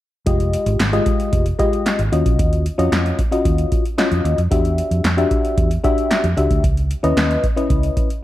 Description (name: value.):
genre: early-eighties boogie funk.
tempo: 113 BPM.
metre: 4/4.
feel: straight.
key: unclear.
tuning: A4 = 438 Hz.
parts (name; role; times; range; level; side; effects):
mellow FM electric piano; accompaniment; 0.3-8.1 s; Ab3 to E5; -20 LUFS; left 2 dB; chorus.
vintage muted fingered electric bass; bass; 0.3-7.9 s; F1 to F2; -19 LUFS; right 1 dB; none.
electro analog drum machine; drums; 0.3-8.2 s; handclaps, hi-hat, kick drum, snare drum; -20 LUFS; equal; gated reverb.
room: light reverb.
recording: none.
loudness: -15 LUFS.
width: side -14 dB against mid.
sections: 0.3-8.2 A section.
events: none.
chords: 0.3 Fm9; 2.1 Ebm9; 4.5 Em9; 6.6 Dbm9.